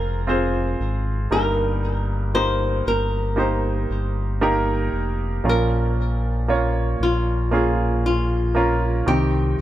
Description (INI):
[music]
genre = pop ballad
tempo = 58 BPM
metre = 4/4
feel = straight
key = unclear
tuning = A4 = 440 Hz
[part]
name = flamenco guitar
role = melody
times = 0.0-9.6 s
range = F4 to C5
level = -25 LUFS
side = left 2 dB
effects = ping-pong delay
[part]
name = clear baby grand piano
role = accompaniment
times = 0.0-9.6 s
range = G2 to G5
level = -23 LUFS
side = right 2 dB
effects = none
[part]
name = sub bass with octave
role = bass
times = 0.0-9.6 s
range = F1 to C2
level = -23 LUFS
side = equal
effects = none
[sound]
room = light reverb, small room ambience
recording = none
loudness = -19 LUFS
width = side -13 dB against mid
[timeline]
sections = 0.0-9.6 A section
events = none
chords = 0.0 Fm; 1.3 Eb/G; 5.5 Bbm; 9.1 Cm